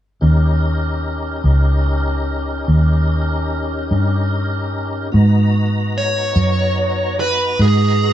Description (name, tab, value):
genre	slow blues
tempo	49 BPM (dotted quarters)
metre	12/8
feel	straight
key	G# minor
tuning	A4 = 440 Hz
part	tonewheel organ	sustained chords	0.2-8.1 s	B3 to A#5	-24 LUFS	left 2 dB	slow rotary speaker, overdrive, chorus vibrato
part	vintage muted fingered electric bass	bass	0.2-8.1 s	C#2 to G#2	-16 LUFS	equal	none
part	smooth overdriven lead guitar	melody	6.0-8.1 s	G#4 to C#5	-17 LUFS	right 1 dB	none
room	moderate studio reverb, RT60 0.5 s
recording	band playing live in one room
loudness	-15 LUFS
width	side -11 dB against mid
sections	0.2-5.1 A section; 5.1-8.1 B section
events	none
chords	0.2 D#7; 5.1 G#m7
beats	| 0.22 1.45 2.67 3.90 | 5.13 6.36 7.59